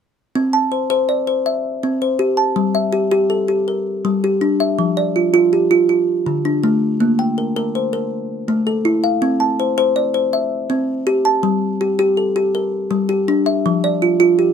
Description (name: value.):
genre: southern african traditional.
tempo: 108 BPM (dotted quarters).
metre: 12/8.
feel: straight.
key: C mixolydian.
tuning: A4 = 440 Hz.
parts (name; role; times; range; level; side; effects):
kalimba; arpeggios; 0.4-14.5 s; D3 to A5; -15 LUFS; equal; none.
room: light reverb.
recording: close, detailed microphones.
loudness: -15 LUFS.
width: side -7 dB against mid.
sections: 0.4-14.5 A section.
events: none.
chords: 0.4 C; 2.6 Gm; 4.8 Dmadd11/F; 5.9 Dm; 7.0 Gmadd11/Bb; 8.1 Am; 9.2 C; 11.4 Gm; 13.7 Dmadd11/F.